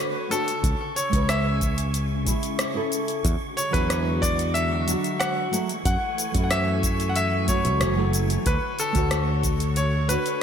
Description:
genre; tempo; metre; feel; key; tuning
sunset chillout; 92 BPM; 4/4; straight; A major; A4 = 440 Hz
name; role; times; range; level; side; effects
bright baby grand piano; melody; 0.0-10.4 s; A4 to F#5; -27 LUFS; left 1 dB; ping-pong delay
nylon-string guitar; accompaniment; 0.0-10.4 s; F#3 to C#5; -29 LUFS; equal; auto-pan
soft string machine; sustained chords; 0.0-10.4 s; C#3 to G#5; -34 LUFS; equal; phaser, ensemble chorus
wind-like tuned noise texture; texture; 0.1-10.4 s; C#6; -37 LUFS; right 2 dB; built-in reverb
deep house drum kit; drums; 0.3-10.4 s; hi-hat, rim click, shaker; -30 LUFS; left 1 dB; gated reverb
fretless electric bass; bass; 0.6-10.2 s; F#1 to F#2; -24 LUFS; equal; none
electronic kick drum; drums; 0.6-9.6 s; none; -27 LUFS; equal; none
room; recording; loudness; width
moderate lush hall reverb, RT60 2.1 s; bright 1980s-style digital production; -21 LUFS; side -8 dB against mid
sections
0.0-10.4 A section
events
none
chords
0.0 Dmaj7; 0.6 Amaj7/C#; 3.2 E9; 5.5 F#m9; 8.5 Dmaj7

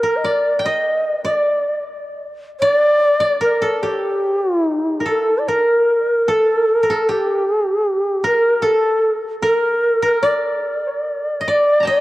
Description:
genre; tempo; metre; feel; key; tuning
japanese traditional, Japanese chamber music; 69-78 BPM; 2/4; rubato; G hirajoshi; A4 = 439 Hz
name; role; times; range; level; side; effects
long shakuhachi; melody; 0.0-12.0 s; G4 to Eb5; -16 LUFS; equal; cassette tape, analog delay
koto; second line; 0.0-12.0 s; G4 to Bb5; -22 LUFS; right 1 dB; cassette tape
room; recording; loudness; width
moderate spring reverb, RT60 2.7 s; home recording on cassette; -15 LUFS; side -17 dB against mid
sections
0.0-5.5 A section; 5.5-12.0 B section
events
none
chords
none

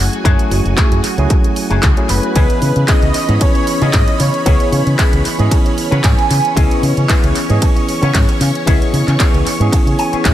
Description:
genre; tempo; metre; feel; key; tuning
nu-disco, nu disco; 114 BPM; 4/4; swing 54% on 16ths; unclear; A4 = 440 Hz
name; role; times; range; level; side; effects
tine electric piano; accompaniment; 0.0-10.3 s; E3 to D#5; -20 LUFS; moving between left 4 dB and right 4 dB; overdrive, auto-pan, tape echo
lush unison pad; sustained chords; 0.0-10.3 s; C#4 to C#6; -23 LUFS; equal; chorus, phaser, sidechain pumping
electric guitar with an envelope filter; riff; 0.0-10.3 s; A3 to G#5; -22 LUFS; left 1 dB; lush chorus, tape echo
fingered electric bass with an envelope filter; bass; 0.0-10.3 s; F#1 to C#3; -15 LUFS; equal; none
house drum kit; drums; 0.1-10.3 s; handclaps, hi-hat, ride cymbal; -22 LUFS; right 1 dB; overdrive, tape echo
electronic kick drum; drums; 0.2-10.3 s; none; -14 LUFS; equal; overdrive
wide unison lead; melody; 2.1-5.0 s; B4 to D#5; -21 LUFS; right 1 dB; tape echo
room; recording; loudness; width
light reverb, digital ambience; echo-heavy mix; -11 LUFS; side -12 dB against mid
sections
0.0-10.3 A section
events
clean electric guitar fill 5.8-6.6, 9.7-10.3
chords
0.0 F#m9; 2.4 C#m7

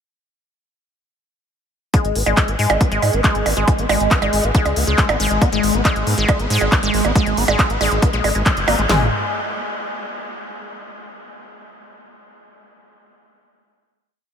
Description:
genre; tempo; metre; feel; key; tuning
psychedelic trance; 138 BPM; 4/4; straight; G# minor; A4 = 443 Hz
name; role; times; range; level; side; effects
liquid acid bass; riff; 1.9-9.1 s; G#3 to B3; -21 LUFS; moving between left 6 dB and right 3 dB; phaser, auto-pan, sidechain pumping, ping-pong delay
techno drum kit; drums; 1.9-9.0 s; handclaps, kick drum, snare drum, toms; -17 LUFS; equal; none
techno drum kit; drums; 1.9-8.9 s; handclaps, hi-hat, percussion blips; -21 LUFS; right 2 dB; none
round analog bass; bass; 2.0-9.1 s; F#1 to G#2; -21 LUFS; equal; none
room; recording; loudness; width
moderate huge ambient reverb, RT60 7.7 s; dreamy mix soaked in reverb; -15 LUFS; side -7 dB against mid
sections
1.9-8.9 drop; 8.9-10.6 final note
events
drop 1.9-8.9; band accent 8.5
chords
none

